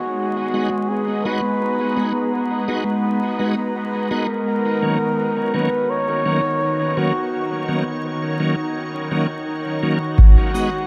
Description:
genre	ambient dub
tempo	84 BPM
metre	4/4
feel	swing 56% on 16ths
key	G# minor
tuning	A4 = 439 Hz
part	trumpet with bucket mute	melody	0.0-10.9 s	F#4 to C#5	-26 LUFS	equal	dub echo
part	soft additive organ-like pad	sustained chords	0.0-10.9 s	D#3 to C#5	-27 LUFS	equal	ensemble chorus, built-in reverb
part	bubbling stepped-filter texture	texture	0.0-10.2 s	B3 to A#5	-30 LUFS	equal	chorus, built-in reverb
part	bright tonewheel organ	stabs	0.5-10.7 s	D#3 to F#4	-27 LUFS	equal	chorus vibrato, slow rotary speaker, dub echo
part	soft dub sub bass	bass	10.2-10.4 s	G#1	-12 LUFS	equal	none
part	electronic kick drum	drums	10.2-10.3 s	none	-16 LUFS	equal	none
part	cabasa	drums	10.6-10.7 s	none	-50 LUFS	equal	none
room	moderate spring reverb, RT60 2.0 s, studio ambience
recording	echo-heavy mix, vinyl crackle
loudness	-20 LUFS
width	mono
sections	0.0-10.2 A section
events	filter sweep on ambient pad 0.0-10.2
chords	0.0 G#m7; 4.5 D#m7; 10.2 G#m7

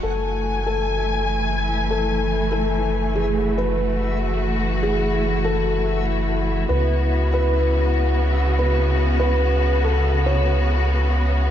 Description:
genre	trip hop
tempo	72 BPM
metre	4/4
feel	straight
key	F# minor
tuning	A4 = 439 Hz
part	felt-muted upright piano	melody	0.0-10.8 s	G#4 to C#5	-25 LUFS	left 1 dB	vintage 12-bit sampler grit, dub echo
part	clear studio string section	sustained chords	0.0-11.5 s	C#3 to G#5	-24 LUFS	equal	vintage 12-bit sampler grit
part	soft dub sub bass	bass	0.0-11.5 s	F#1 to C#2	-21 LUFS	equal	none
part	backwards swelling texture	texture	0.0-11.5 s	E4	-32 LUFS	left 2 dB	built-in reverb, lush chorus
room	moderate lush hall reverb, RT60 2.5 s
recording	dreamy mix soaked in reverb, nothing above 7.6 kHz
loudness	-18 LUFS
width	side -10 dB against mid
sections	0.0-11.5 A section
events	none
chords	0.0 F#m9; 6.7 C#7sus4

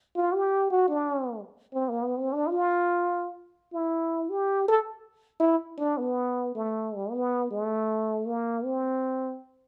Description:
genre	jazz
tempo	106 BPM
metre	4/4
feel	swing 69% on 8ths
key	G mixolydian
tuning	A4 = 440 Hz
part	trombone with plunger mute	solo	0.2-9.4 s	G3 to A4	-28 LUFS	equal	none
room	moderate studio reverb, RT60 0.8 s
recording	none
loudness	-28 LUFS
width	mono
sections	0.0-6.0 A section; 6.0-9.7 B section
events	trombone solo 0.0-6.0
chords	none

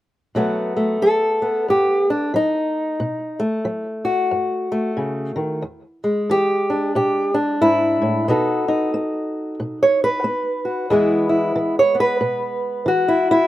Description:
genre	acoustic country blues, solo or duo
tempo	91 BPM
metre	4/4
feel	swing 60% on 8ths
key	unclear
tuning	A4 = 440 Hz
part	fingerpicked old ladder-braced acoustic guitar	solo	0.3-13.5 s	E2 to C#5	-17 LUFS	equal	none
room	little or no reverb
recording	recorded outdoors, with no room sound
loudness	-17 LUFS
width	side -14 dB against mid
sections	0.3-10.9 A section; 10.9-13.5 B section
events	none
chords	0.3 B7; 5.6 E7; 8.3 B7; 10.9 E

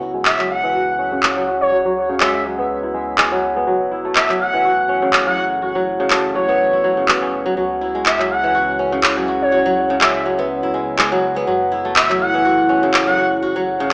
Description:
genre	afro house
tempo	123 BPM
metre	4/4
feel	swing 55% on 16ths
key	F# minor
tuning	A4 = 439 Hz
part	dark analog pad	sustained chords	0.9-13.9 s	C#4 to E5	-28 LUFS	equal	chorus, phaser
part	kora	arpeggios	0.0-13.9 s	C#3 to F#4	-21 LUFS	equal	low-pass filter, diffuse ambient delay
part	smooth gliding synth bass	bass	0.0-13.9 s	F#1 to C#2	-45 LUFS	equal	none
part	expressive portamento lead	melody	0.3-13.3 s	C#5 to F#5	-22 LUFS	equal	subtle chorus, cassette tape, diffuse ambient delay
part	electronic handclaps	drums	0.3-13.0 s	none	-19 LUFS	equal	studio reverb
room	wet plate reverb, RT60 1.1 s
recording	dreamy mix soaked in reverb, small speaker sound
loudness	-17 LUFS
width	mono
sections	0.0-13.9 A section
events	filter sweep on kora 0.0-13.9; filter sweep on analog synth pad 0.0-13.9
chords	0.0 C#m; 3.7 F#m7; 7.6 C#m; 11.5 F#m7

